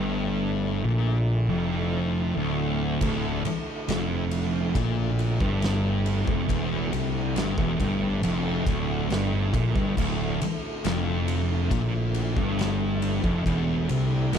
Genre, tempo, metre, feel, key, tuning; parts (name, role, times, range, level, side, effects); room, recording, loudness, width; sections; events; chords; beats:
stoner and doom metal; 69 BPM; 4/4; straight; D minor; A4 = 437 Hz
tonewheel organ; sustained chords; 0.0-14.4 s; D3 to E4; -36 LUFS; right 2 dB; slow rotary speaker, overdrive, chorus vibrato
thick fuzz guitar; riff; 0.0-14.4 s; D2 to C3; -28 LUFS; left 7 dB; distortion
thick fuzz guitar; riff; 0.0-14.4 s; D2 to C3; -28 LUFS; right 9 dB; distortion
fuzz fingered electric bass; bass; 0.0-14.4 s; D1 to C2; -30 LUFS; equal; overdrive
oversized low-tuned drum kit; drums; 3.0-14.4 s; crash cymbal, kick drum, ride cymbal, snare drum; -31 LUFS; equal
small room ambience; -23 LUFS; side -8 dB against mid
0.0-14.4 A section
0.0 Dm
0.40 1.27 2.15 | 3.02 3.88 4.76 5.63 | 6.50 7.37 8.24 9.11 | 9.98 10.85 11.72 12.59 | 13.46 14.33